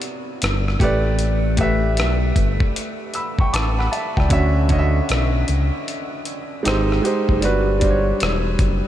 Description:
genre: R&B, neo-soul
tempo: 77 BPM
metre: 4/4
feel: swing 64% on 16ths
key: D major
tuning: A4 = 440 Hz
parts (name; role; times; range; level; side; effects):
- clear concert grand piano; accompaniment; 0.0-8.9 s; C3 to E6; -21 LUFS; right 1 dB; none
- dusty soul sampler-style drum kit; drums; 0.0-8.8 s; hi-hat, kick drum, rim click; -23 LUFS; equal; none
- smooth synth bass; bass; 0.4-8.8 s; E1 to D2; -20 LUFS; equal; none
room: moderate huge ambient reverb, RT60 7.9 s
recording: dreamy mix soaked in reverb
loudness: -17 LUFS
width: side -12 dB against mid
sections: 0.0-8.9 A section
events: none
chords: 0.0 Cmaj9#11; 0.8 A9sus4; 4.3 Dmaj9; 6.6 G#maj7; 7.4 Gmaj7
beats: 0.41 | 1.19 1.97 2.75 3.53 | 4.31 5.09 5.87 6.65 | 7.43 8.21

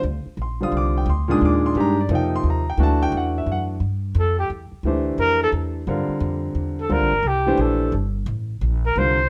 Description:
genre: modal jazz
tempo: 175 BPM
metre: 3/4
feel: swing 64% on 8ths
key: G dorian from 3.8 s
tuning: A4 = 438 Hz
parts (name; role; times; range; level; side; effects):
- warm baby grand piano; accompaniment; 0.0-9.2 s; Bb2 to Eb6; -24 LUFS; equal; none
- upright bass; bass; 0.0-9.3 s; G1 to G2; -25 LUFS; equal; none
- dark trumpet; melody; 4.2-9.3 s; G4 to C5; -23 LUFS; equal; none
room: light reverb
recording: none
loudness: -21 LUFS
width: mono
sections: 0.0-3.8 A section; 3.8-9.3 A section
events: trumpet solo 3.8-9.3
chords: 0.0 Cmadd9; 2.8 D; 3.8 Gm69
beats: 0.04 0.38 | 0.72 1.07 1.41 | 1.75 2.10 2.44 | 2.78 3.12 3.47 | 3.81 4.15 4.50 | 4.84 5.18 5.53 | 5.87 6.21 6.56 | 6.90 7.24 7.59 | 7.93 8.27 8.62 | 8.96

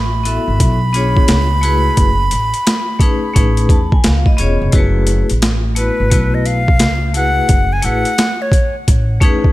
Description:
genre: hip hop, jazz-hop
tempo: 87 BPM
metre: 4/4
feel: swing 64% on 16ths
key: F# dorian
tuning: A4 = 440 Hz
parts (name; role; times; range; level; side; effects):
- breathy silver concert flute; melody; 0.0-8.8 s; B4 to B5; -19 LUFS; equal; tape echo
- upright bass; bass; 0.0-9.5 s; E1 to E2; -16 LUFS; equal; none
- vibraphone with hard mallets; accompaniment; 0.2-9.5 s; G#3 to A5; -20 LUFS; left 3 dB; none
- boom bap sampler-style drum kit; drums; 0.3-9.5 s; hi-hat, kick drum, snare drum; -14 LUFS; equal; overdrive
room: light reverb, small room ambience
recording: none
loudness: -11 LUFS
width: side -17 dB against mid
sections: 0.0-4.7 A section; 4.7-9.5 B section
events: vibraphone fill 3.4-4.7; flute solo 4.7-9.5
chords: 0.0 F#m11; 0.6 B7sus4; 1.3 C#5; 2.0 F#madd9; 3.4 Amaj9#11; 4.0 C#7; 4.7 F#m11; 6.1 B7sus4; 6.8 C#7; 7.5 F#m11; 8.9 Amaj9#11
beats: 0.59 1.28 | 1.97 2.66 3.35 4.04 | 4.73 5.42 6.11 6.80 | 7.49 8.18 8.87

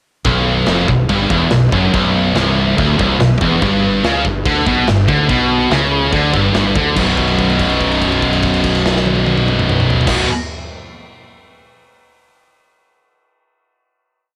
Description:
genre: heavy metal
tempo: 143 BPM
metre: 4/4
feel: straight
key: B minor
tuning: A4 = 441 Hz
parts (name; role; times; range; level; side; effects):
- fingered electric bass; bass; 0.2-10.2 s; B0 to D2; -24 LUFS; equal; none
- big rock drum kit; drums; 0.2-10.2 s; china cymbal, crash cymbal, kick drum, snare drum, toms; -23 LUFS; equal; cassette tape
- heavy high-gain guitar; riff; 0.3-10.3 s; B1 to D3; -18 LUFS; equal; distortion
- scooped high-gain guitar; riff; 0.3-10.3 s; B1 to D3; -19 LUFS; equal; distortion
room: small room ambience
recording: home recording on cassette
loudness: -14 LUFS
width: mono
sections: 0.3-7.0 riff; 7.0-10.3 final chord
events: held note 7.0-10.1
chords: 0.3 Bm; 3.6 G5; 7.0 B5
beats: | 0.26 0.68 1.10 1.52 | 1.95 2.37 2.79 3.21 | 3.63 4.05 4.46 4.88 | 5.30 5.72 6.13 6.55 | 6.97 7.39 7.80 8.22 | 8.64 9.06 9.48 9.90

